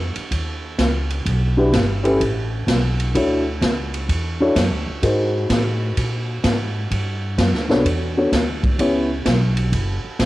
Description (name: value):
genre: jazz, big band swing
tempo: 127 BPM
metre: 4/4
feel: swing 66% on 8ths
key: unclear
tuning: A4 = 440 Hz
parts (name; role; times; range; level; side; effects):
- upright bass; bass; 0.0-10.3 s; F#1 to A#2; -22 LUFS; equal; none
- swinging big-band drum kit; drums; 0.2-10.3 s; hi-hat, kick drum, ride cymbal, snare drum; -22 LUFS; equal; cassette tape
- dark concert grand piano; accompaniment; 1.6-9.1 s; B3 to C#5; -20 LUFS; left 1 dB; cassette tape
room: light reverb, small room ambience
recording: home recording on cassette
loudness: -17 LUFS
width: side -17 dB against mid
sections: 0.0-10.3 A section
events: none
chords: 0.0 N.C.; 1.3 Em7; 2.2 Asus2; 3.1 Dmaj9; 5.0 G#9; 6.9 Gmaj9#11; 8.8 C#m7b5; 9.7 N.C.